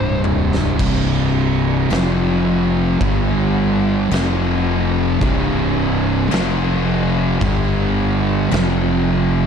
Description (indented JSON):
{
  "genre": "stoner and doom metal",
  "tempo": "54 BPM",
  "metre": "4/4",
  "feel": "straight",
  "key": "unclear",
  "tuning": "A4 = 445 Hz",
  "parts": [
    { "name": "thick fuzz guitar", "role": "riff", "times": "0.0-9.5 s", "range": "C2 to G3", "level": "-21 LUFS", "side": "left 10 dB", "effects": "distortion" },
    { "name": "thick fuzz guitar", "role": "riff", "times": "0.0-9.5 s", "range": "C2 to G3", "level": "-21 LUFS", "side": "right 9 dB", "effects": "distortion" },
    { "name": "fuzz fingered electric bass", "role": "bass", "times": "0.0-9.5 s", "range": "C1 to G1", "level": "-22 LUFS", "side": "equal", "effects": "overdrive" },
    { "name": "oversized low-tuned drum kit", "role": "drums", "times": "0.2-8.8 s", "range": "crash cymbal, kick drum, snare drum, toms", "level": "-23 LUFS", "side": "equal", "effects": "none" },
    { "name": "thick fuzz guitar", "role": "riff", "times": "0.8-9.5 s", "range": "C2 to G3", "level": "-22 LUFS", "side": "equal", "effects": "distortion" }
  ],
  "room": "studio reverb",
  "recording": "dark, warm production",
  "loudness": "-15 LUFS",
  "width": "side -7 dB against mid",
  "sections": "0.8-9.5 A section",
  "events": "drum fill 0.0-0.8",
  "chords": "0.0 C5; 1.9 F5; 3.0 G5; 4.1 F5; 5.2 C5; 6.3 F5; 7.4 G5; 8.5 F5"
}